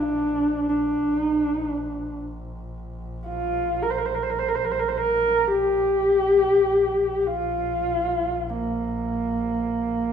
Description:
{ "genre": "mongolian traditional, Mongolian folk", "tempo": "free time", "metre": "none", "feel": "none", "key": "Bb gong mode", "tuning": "A4 = 440 Hz", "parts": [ { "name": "dark horsehead fiddle", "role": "melody", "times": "0.0-10.1 s", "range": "Bb3 to C5", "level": "-21 LUFS", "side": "equal", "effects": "none" }, { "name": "rich double bass", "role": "drone", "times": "0.0-10.1 s", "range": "Bb1", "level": "-35 LUFS", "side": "equal", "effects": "none" } ], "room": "wet stone room reverb, RT60 1.2 s", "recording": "band playing live in one room", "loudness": "-21 LUFS", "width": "side -8 dB against mid", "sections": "0.0-10.1 A section", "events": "none", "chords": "none", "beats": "free time" }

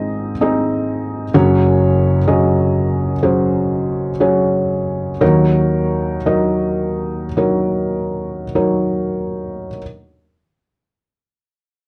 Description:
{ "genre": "folk", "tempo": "46-65 BPM", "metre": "4/4", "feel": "straight", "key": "Eb dorian", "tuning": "A4 = 442 Hz", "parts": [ { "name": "felt-muted upright piano", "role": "solo", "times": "0.0-9.8 s", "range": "Gb1 to Eb5", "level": "-17 LUFS", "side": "equal", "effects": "none" } ], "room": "light reverb", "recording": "worn, warbling old tape, cassette tape, warbly pitch drift", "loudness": "-17 LUFS", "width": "mono", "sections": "0.0-9.8 A section", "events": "slowing down 1.3-9.8", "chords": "0.0 Ab; 1.3 Gbsus2; 5.2 Ebm7", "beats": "0.41 | 1.34 2.27 3.23 4.20 | 5.21 6.27 7.38 8.56" }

